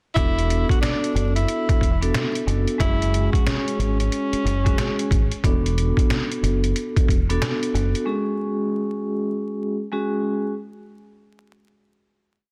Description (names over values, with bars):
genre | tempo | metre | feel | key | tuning
hip hop, boom-bap hip-hop | 91 BPM | 4/4 | swing 62% on 16ths | F# minor | A4 = 440 Hz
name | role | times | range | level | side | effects
warm tenor saxophone | melody | 0.1-5.4 s | C#4 to F#4 | -29 LUFS | equal | high-pass filter, low-pass filter, digital delay
vibraphone with soft mallets | accompaniment | 0.2-10.5 s | G#3 to A4 | -28 LUFS | equal | cassette tape, high-pass filter, low-pass filter
deep dub fingered electric bass | bass | 0.2-7.9 s | E1 to G#1 | -24 LUFS | equal | none
trip hop sampler-style drum kit | drums | 0.2-8.1 s | hi-hat, kick drum, snare drum | -24 LUFS | equal | none
room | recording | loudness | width
little or no reverb | dense, heavily limited modern master, vinyl crackle | -22 LUFS | mono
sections
0.2-10.7 verse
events
none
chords
0.2 E7sus4; 2.8 F#sus2; 5.4 E7sus4; 8.1 F#sus2